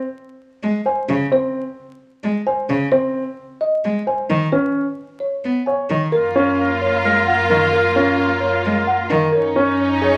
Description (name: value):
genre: classical, minimalist pattern music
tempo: 262 BPM (eighths)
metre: 7/8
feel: straight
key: F# major from 6.1 s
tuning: A4 = 442 Hz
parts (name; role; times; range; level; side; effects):
- rich cello; accompaniment; 0.6-9.3 s; Db3 to Cb4; -23 LUFS; equal; none
- folk marimba with soft mallets; melody; 0.9-10.2 s; A#4 to Ab5; -24 LUFS; equal; none
- warm baby grand piano; arpeggios; 0.9-10.2 s; C4 to Db5; -22 LUFS; equal; none
- breathy clarinet; second line; 6.1-10.2 s; A#4 to C#5; -24 LUFS; equal; none
- rich symphonic string section; sustained chords; 6.1-10.2 s; A#3 to E#4; -23 LUFS; equal; none
- rich double bass; bass; 6.1-10.2 s; F#2; -32 LUFS; equal; none
room: moderate large studio reverb, RT60 1.1 s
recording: vinyl crackle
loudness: -19 LUFS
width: mono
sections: 0.0-6.1 A section; 6.1-10.2 B section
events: none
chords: 0.0 Db5; 2.9 N.C.; 4.5 Db5; 6.1 F#maj7; 9.3 D#m7/F#